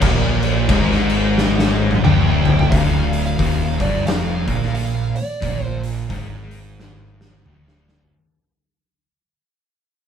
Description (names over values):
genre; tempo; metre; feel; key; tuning
stoner and doom metal; 89 BPM; 4/4; swing 60% on 8ths; unclear; A4 = 438 Hz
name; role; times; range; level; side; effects
thick fuzz guitar; riff; 0.0-8.1 s; D2 to Bb2; -21 LUFS; left 5 dB; distortion
thick fuzz guitar; riff; 0.0-8.1 s; D2 to Bb2; -24 LUFS; right 6 dB; distortion
tight distorted guitar; riff; 0.0-2.7 s; D2 to Bb2; -24 LUFS; right 1 dB; distortion
fuzz picked electric bass; bass; 0.0-8.1 s; D1 to Bb1; -24 LUFS; equal; overdrive
oversized low-tuned drum kit; drums; 0.0-8.1 s; crash cymbal, hi-hat, kick drum, snare drum, toms; -20 LUFS; left 1 dB; none
fuzz lead guitar; melody; 2.0-5.8 s; D5 to G5; -27 LUFS; right 1 dB; distortion
room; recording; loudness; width
wet studio reverb, RT60 0.7 s; band playing live in one room; -15 LUFS; side -8 dB against mid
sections
0.0-2.7 A section; 2.7-8.1 B section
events
drum fill 1.4-2.7, 6.8-8.1; fade-out 2.7-8.1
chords
0.0 N.C.; 2.7 Dm